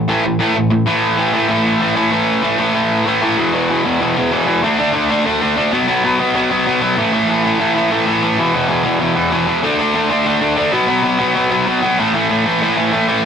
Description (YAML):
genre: punk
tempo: 192 BPM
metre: 4/4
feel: straight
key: unclear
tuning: A4 = 445 Hz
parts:
  - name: cranked stack guitar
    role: solo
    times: 0.0-13.2 s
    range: E2 to D4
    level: -13 LUFS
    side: equal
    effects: overdrive
room: moderate studio reverb, RT60 0.6 s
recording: rough rehearsal-room recording, tube saturation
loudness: -13 LUFS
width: side -7 dB against mid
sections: 0.9-3.4 A section; 3.4-13.3 B section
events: none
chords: 0.0 A5; 3.4 E5; 4.6 D5; 5.7 B5; 7.0 A5; 8.4 E5; 9.6 D5; 10.7 B5; 12.0 A5